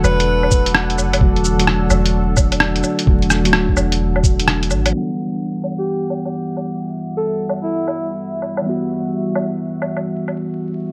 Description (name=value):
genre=future garage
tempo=129 BPM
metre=4/4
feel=swing 65% on 16ths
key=E minor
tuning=A4 = 439 Hz
part: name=breathy alto saxophone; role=melody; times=0.0-0.7, 5.8-8.1 s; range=E4 to B4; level=-25 LUFS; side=equal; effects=digital delay
part: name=muted felt-like synth keys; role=accompaniment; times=0.0-10.9 s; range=D3 to F#5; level=-24 LUFS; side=equal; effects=chorus, sidechain pumping, delay
part: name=deep dark ambient pad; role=sustained chords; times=0.0-10.9 s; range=G3 to F#5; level=-29 LUFS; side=equal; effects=chorus, built-in reverb, vintage 12-bit sampler grit, sidechain pumping
part: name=soft 808-style bass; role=bass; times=0.0-4.9 s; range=D1 to A1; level=-21 LUFS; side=equal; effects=tube saturation, sidechain pumping
part: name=lo-fi sampler-style drum kit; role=drums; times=0.0-10.4 s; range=cabasa, hi-hat, rim click, woodblock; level=-22 LUFS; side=equal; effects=low-pass filter on hats, small room ambience, low-pass filter on snare, low-pass filter on perc
part: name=electronic kick drum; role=drums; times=0.5-4.4 s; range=none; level=-17 LUFS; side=equal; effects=small room ambience
room=light reverb, digital ambience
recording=vinyl crackle, low-pass filter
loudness=-18 LUFS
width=mono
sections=0.0-4.9 A section; 4.9-10.9 B section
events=none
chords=0.0 D; 4.9 Emadd9